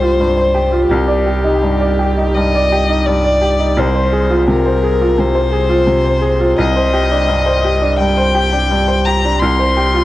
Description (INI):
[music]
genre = neoclassical piano and strings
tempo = 85 BPM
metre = 4/4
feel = rubato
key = C minor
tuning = A4 = 441 Hz
[part]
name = dark violin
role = melody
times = 0.0-10.0 s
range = G4 to C6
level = -17 LUFS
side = left 4 dB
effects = none
[part]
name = bright upright piano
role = accompaniment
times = 0.0-10.0 s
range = C2 to D5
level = -14 LUFS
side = equal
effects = cassette tape
[part]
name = pure sine sub bass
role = bass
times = 0.0-10.0 s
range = C2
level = -18 LUFS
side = right 1 dB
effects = none
[sound]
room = light reverb, small room ambience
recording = home recording on cassette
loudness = -12 LUFS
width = side -15 dB against mid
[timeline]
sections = 0.0-10.0 A section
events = none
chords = 0.0 Fsus2/C; 0.9 Cmadd9; 3.8 Fm/C; 6.6 Cmadd9; 9.4 Fsus2/C